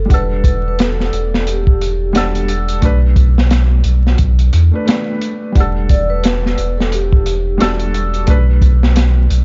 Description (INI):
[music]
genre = trip hop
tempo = 88 BPM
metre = 4/4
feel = swing 59% on 16ths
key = E minor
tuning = A4 = 440 Hz
[part]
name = vibraphone with soft mallets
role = melody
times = 0.0-7.6 s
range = G4 to D5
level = -25 LUFS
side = equal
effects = tape echo
[part]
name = warm sub bass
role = bass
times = 0.0-9.4 s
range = E1 to E2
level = -16 LUFS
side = equal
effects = none
[part]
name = felt-muted upright piano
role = accompaniment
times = 0.1-8.4 s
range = G3 to F#5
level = -24 LUFS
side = equal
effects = tremolo, tape echo
[part]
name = crunchy breakbeat drum kit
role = drums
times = 0.1-9.4 s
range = hi-hat, kick drum, snare drum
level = -18 LUFS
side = equal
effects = vintage 12-bit sampler grit
[sound]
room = small room ambience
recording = dark, warm production, vinyl crackle, nothing above 7.5 kHz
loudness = -14 LUFS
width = mono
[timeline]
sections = 0.0-9.4 A section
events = none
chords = 0.1 Em11; 2.8 Bm7; 5.6 Em11; 8.3 N.C.